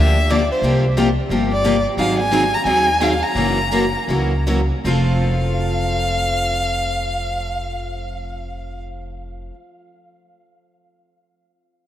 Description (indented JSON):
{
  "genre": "acoustic string swing (jazz manouche)",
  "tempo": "151-178 BPM",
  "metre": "4/4",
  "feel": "swing 61% on 8ths",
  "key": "F major",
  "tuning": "A4 = 440 Hz",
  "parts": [
    { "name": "rich violin", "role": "melody", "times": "0.0-8.8 s", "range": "C5 to Bb5", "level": "-21 LUFS", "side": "equal", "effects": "none" },
    { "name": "picked steel-string acoustic guitar", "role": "accompaniment", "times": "0.0-9.5 s", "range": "C3 to A4", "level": "-22 LUFS", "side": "left 3 dB", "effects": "none" },
    { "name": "picked steel-string acoustic guitar", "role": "accompaniment", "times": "0.0-9.5 s", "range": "C3 to Bb4", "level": "-26 LUFS", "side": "right 4 dB", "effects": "none" },
    { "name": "upright bass", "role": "bass", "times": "0.0-9.5 s", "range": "F1 to Eb2", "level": "-21 LUFS", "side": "equal", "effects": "none" }
  ],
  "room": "wet cathedral reverb, RT60 4.8 s",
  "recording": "in a vast, echoing space",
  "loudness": "-16 LUFS",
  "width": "side -11 dB against mid",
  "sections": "0.0-4.9 A section; 4.9-8.0 B section",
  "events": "slowing down 2.0-4.9",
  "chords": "0.0 Gm7; 0.6 C9sus4; 2.0 Ab7; 3.4 Gb7; 4.9 F"
}